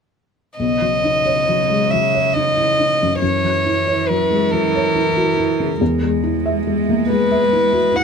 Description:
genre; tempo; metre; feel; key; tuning
neoclassical piano and strings; 46 BPM (dotted quarters); 6/8; rubato; unclear; A4 = 435 Hz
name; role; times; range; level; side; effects
warm violin; melody; 0.6-8.0 s; A#4 to F#5; -17 LUFS; left 2 dB; none
rich cello; second line; 0.6-8.0 s; C#3 to G#3; -23 LUFS; right 13 dB; none
felt-muted upright piano; accompaniment; 0.6-8.0 s; B1 to E5; -19 LUFS; left 2 dB; none
room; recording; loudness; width
moderate studio reverb, RT60 0.5 s; none; -15 LUFS; side -6 dB against mid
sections
0.6-8.0 A section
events
none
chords
0.6 Badd9; 3.2 F#7; 5.8 E

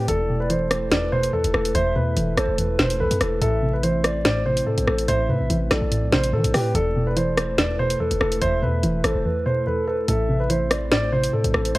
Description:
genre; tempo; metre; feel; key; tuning
hip hop, drill; 144 BPM; 4/4; half-time; A minor; A4 = 442 Hz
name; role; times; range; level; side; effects
dark baby grand piano; melody; 0.0-11.8 s; G4 to D5; -25 LUFS; equal; none
hollow clarinet-like synth lead; second line; 0.0-11.8 s; A4 to E5; -29 LUFS; right 1 dB; chorus, tremolo, tape echo
soft round pluck; accompaniment; 0.0-11.8 s; E2 to E3; -25 LUFS; equal; chorus
glass harmonica; sustained chords; 0.0-11.8 s; A3 to A4; -32 LUFS; right 1 dB; none
hard-hitting 808-style bass; bass; 0.0-11.8 s; E1 to E3; -26 LUFS; equal; none
drill drum kit; drums; 0.1-11.8 s; hi-hat, rim click, snare drum; -23 LUFS; equal; none
room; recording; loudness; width
light reverb; dry, gritty hardware recording, vinyl crackle; -19 LUFS; side -19 dB against mid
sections
0.0-10.1 A section; 10.1-11.8 A section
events
drums muted 9.2-10.1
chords
0.1 Esus4; 3.4 Am; 6.7 Esus4; 10.1 Am

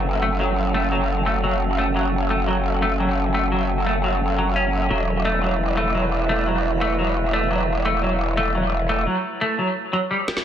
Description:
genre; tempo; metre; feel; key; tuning
dark technical drum and bass; 173 BPM; 4/4; straight; unclear; A4 = 440 Hz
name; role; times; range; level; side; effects
metallic inharmonic drone; sustained chords; 0.0-9.0 s; F#3 to B4; -27 LUFS; right 1 dB; chorus, built-in reverb
growl bass; bass; 0.0-9.1 s; E1 to F#1; -22 LUFS; equal; chorus, overdrive
semi-hollow electric guitar; arpeggios; 0.2-10.4 s; F#3 to C#4; -23 LUFS; equal; lush chorus, digital delay
electronic snare drum; drums; 10.3-10.4 s; none; -22 LUFS; equal; none
room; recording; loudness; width
light reverb, digital ambience; dense, heavily limited modern master; -19 LUFS; side -9 dB against mid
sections
0.0-10.4 A section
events
break 9.1-10.4; drum fill 10.3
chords
0.0 F#m; 4.9 E5

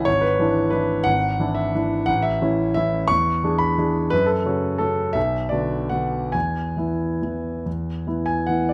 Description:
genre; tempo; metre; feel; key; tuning
classical, piano waltz; 133-186 BPM; 3/4; rubato; unclear; A4 = 440 Hz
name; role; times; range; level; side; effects
warm concert grand piano; solo; 0.0-8.7 s; G#1 to C#6; -22 LUFS; equal; none
room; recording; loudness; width
light reverb; close, detailed microphones; -22 LUFS; mono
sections
0.0-8.7 A section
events
none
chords
0.1 E7/G#; 2.1 A; 3.1 E7; 4.1 F#m; 5.2 Bm; 6.3 E

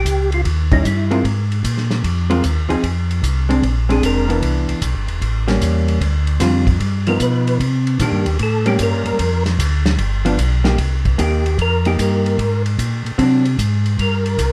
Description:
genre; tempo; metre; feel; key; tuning
soul jazz organ trio; 151 BPM; 4/4; swing 67% on 8ths; C minor; A4 = 439 Hz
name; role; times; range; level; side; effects
percussive tonewheel organ; melody; 0.0-1.2, 3.9-4.4, 7.1-14.5 s; Eb4 to B4; -24 LUFS; equal; slow rotary speaker, chorus vibrato
mellow tonewheel organ; bass; 0.0-14.5 s; E1 to C3; -20 LUFS; equal; slow rotary speaker
warm soul drum kit; drums; 0.1-14.5 s; hi-hat, kick drum, ride cymbal, snare drum; -26 LUFS; equal; none
vintage hollow-body jazz guitar; accompaniment; 0.7-13.4 s; D3 to Bb4; -21 LUFS; equal; none
room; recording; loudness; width
moderate club reverb, RT60 0.6 s; dark, warm production; -17 LUFS; mono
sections
0.0-10.8 A section; 10.8-14.5 A section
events
tonewheel organ solo 0.0-14.5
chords
0.5 Eb7b9; 1.2 Ab69; 2.8 Fm; 3.6 Bb9; 4.4 Cmaj9; 5.2 A7b9; 6.0 Dm7; 6.8 Gaug7; 7.6 Cm9; 8.4 A7b9; 9.2 Dm; 10.0 G7; 10.8 Cm7; 12.4 Ab7#11; 14.0 Gm

